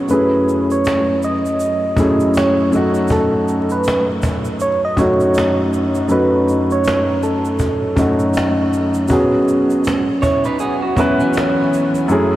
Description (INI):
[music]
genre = lo-fi hip hop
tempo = 80 BPM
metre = 4/4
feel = swing 61% on 16ths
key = F# dorian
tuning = A4 = 440 Hz
[part]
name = dark upright piano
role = accompaniment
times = 0.0-12.4 s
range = F#2 to B4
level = -15 LUFS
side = equal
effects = cassette tape
[part]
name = soft struck synth lead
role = melody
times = 0.1-8.3 s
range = A4 to D#5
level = -20 LUFS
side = right 1 dB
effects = chorus, analog delay
[part]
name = egg shaker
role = percussion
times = 0.1-12.3 s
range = none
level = -40 LUFS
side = right 7 dB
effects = none
[part]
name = cajon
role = drums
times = 0.9-12.2 s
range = none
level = -24 LUFS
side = equal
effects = none
[part]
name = electric guitar through a small old amp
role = second line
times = 10.2-12.1 s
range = E3 to C#5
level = -19 LUFS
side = right 2 dB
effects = analog delay
[sound]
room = moderate huge ambient reverb, RT60 8.1 s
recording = dreamy mix soaked in reverb, vinyl crackle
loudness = -14 LUFS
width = side -14 dB against mid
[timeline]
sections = 0.0-12.4 A section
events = break 0.0-9.1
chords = 0.1 F#m9; 2.7 F#m6; 9.1 E69/F#